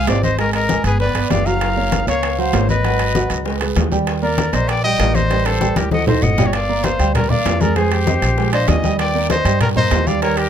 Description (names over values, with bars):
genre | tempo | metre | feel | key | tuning
Afro-Cuban jazz | 195 BPM | 4/4 | straight | Eb major | A4 = 440 Hz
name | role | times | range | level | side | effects
warm trumpet | melody | 0.0-10.5 s | G4 to F5 | -21 LUFS | equal | none
breathy bright jazz flute | second line | 0.0-10.5 s | Bb4 to Bb5 | -24 LUFS | left 6 dB | none
warm concert grand piano | accompaniment | 0.0-10.5 s | Gb3 to Ab5 | -22 LUFS | right 4 dB | none
upright bass | bass | 0.0-10.5 s | Gb1 to G2 | -20 LUFS | equal | none
bongos | percussion | 0.1-10.5 s | none | -28 LUFS | left 4 dB | none
congas | percussion | 0.1-10.5 s | none | -22 LUFS | left 4 dB | none
guiro | percussion | 0.1-10.5 s | none | -32 LUFS | right 7 dB | none
timbales | percussion | 0.1-10.5 s | none | -26 LUFS | right 7 dB | none
room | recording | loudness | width
light reverb | close, detailed microphones | -14 LUFS | side -9 dB against mid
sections
0.0-6.5 A section; 6.5-10.5 B section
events
drum fill 5.3-6.5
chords
0.4 Ab5; 1.0 G7; 1.6 Gbmaj7; 2.8 Abm7; 3.5 Dbsus2; 4.1 Ebmaj7; 5.3 Am7b5; 5.9 D5; 6.5 Gm7; 7.8 Fm7; 8.4 Bb7; 9.0 Ebmaj7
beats
0.08 | 0.39 0.69 1.00 1.31 | 1.61 1.92 2.23 2.54 | 2.84 3.15 3.46 3.77 | 4.07 4.38 4.69 4.99 | 5.30 5.61 5.92 6.22 | 6.53 6.84 7.14 7.45 | 7.76 8.07 8.38 8.68 | 8.99 9.30 9.61 9.91 | 10.22